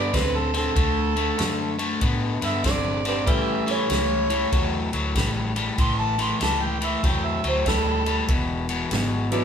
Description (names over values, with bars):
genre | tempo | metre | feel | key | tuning
electric blues shuffle | 96 BPM | 4/4 | swing 64% on 8ths | A mixolydian | A4 = 440 Hz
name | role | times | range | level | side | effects
overdriven harmonica | second line | 0.0-8.3 s | G4 to C6 | -26 LUFS | right 2 dB | none
crunchy overdriven guitar | riff | 0.0-9.4 s | E2 to C4 | -25 LUFS | left 3 dB | none
vintage muted fingered electric bass | bass | 0.0-9.4 s | E1 to A2 | -29 LUFS | equal | none
vintage drum kit | drums | 0.1-9.4 s | kick drum, ride cymbal, snare drum | -27 LUFS | equal | none
bright upright piano | accompaniment | 3.3-5.0, 9.3-9.4 s | F#3 to E4 | -29 LUFS | right 2 dB | none
room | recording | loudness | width
moderate studio reverb, RT60 0.8 s | band playing live in one room | -21 LUFS | side -8 dB against mid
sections
0.0-9.4 A section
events
harmonica solo 0.0-9.4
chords
0.0 D7; 3.3 A7; 8.3 E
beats
0.14 | 0.76 1.39 2.02 2.65 | 3.27 3.90 4.53 5.16 | 5.78 6.41 7.04 7.66 | 8.29 8.92